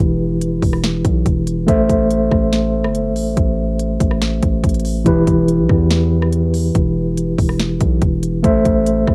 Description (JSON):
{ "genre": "hip hop, trap", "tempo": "142 BPM", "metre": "4/4", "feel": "half-time", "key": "E minor", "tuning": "A4 = 441 Hz", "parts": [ { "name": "mellow tine electric piano", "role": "accompaniment", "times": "0.0-9.1 s", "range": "E3 to E5", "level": "-19 LUFS", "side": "equal", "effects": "low-pass filter, cassette tape" }, { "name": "distorted 808-style bass", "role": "bass", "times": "0.0-9.1 s", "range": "E1 to E2", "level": "-22 LUFS", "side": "equal", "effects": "distortion" }, { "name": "trap drum kit", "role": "drums", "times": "0.4-9.1 s", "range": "hi-hat, kick drum, rim click, snare drum", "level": "-21 LUFS", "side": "equal", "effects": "cassette tape" } ], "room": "light reverb", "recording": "home recording on cassette", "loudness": "-16 LUFS", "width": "mono", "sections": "0.0-9.1 A section", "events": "none", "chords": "0.0 Em; 1.7 Am; 5.1 Em; 8.4 Am", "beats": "0.41 0.84 1.26 | 1.68 2.10 2.53 2.95 | 3.37 3.79 4.22 4.64 | 5.06 5.48 5.91 6.33 | 6.75 7.17 7.60 8.02 | 8.44 8.86" }